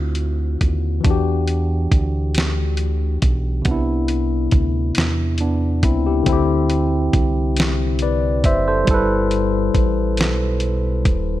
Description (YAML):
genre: slow six-eight R&B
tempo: 46 BPM (dotted quarters)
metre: 6/8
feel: straight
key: unclear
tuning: A4 = 439 Hz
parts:
  - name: bright tine electric piano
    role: accompaniment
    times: 0.0-11.4 s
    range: C3 to E5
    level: -20 LUFS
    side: moving between left 8 dB and right 2 dB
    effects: auto-pan
  - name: round analog bass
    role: bass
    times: 0.0-11.4 s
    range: Eb1 to E2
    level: -21 LUFS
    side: right 1 dB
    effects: none
  - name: dusty soul sampler-style drum kit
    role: drums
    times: 0.1-11.3 s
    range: hi-hat, kick drum, snare drum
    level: -19 LUFS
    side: right 1 dB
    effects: none
room: light reverb, digital ambience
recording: none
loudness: -16 LUFS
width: side -14 dB against mid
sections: 0.0-1.0 A section; 1.0-11.4 B section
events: none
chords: 0.0 D7sus2; 1.0 Em9; 3.7 Cmaj9; 6.3 D9sus4; 8.9 G69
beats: | 1.04 2.35 | 3.65 4.96 | 6.26 7.57 | 8.87 10.18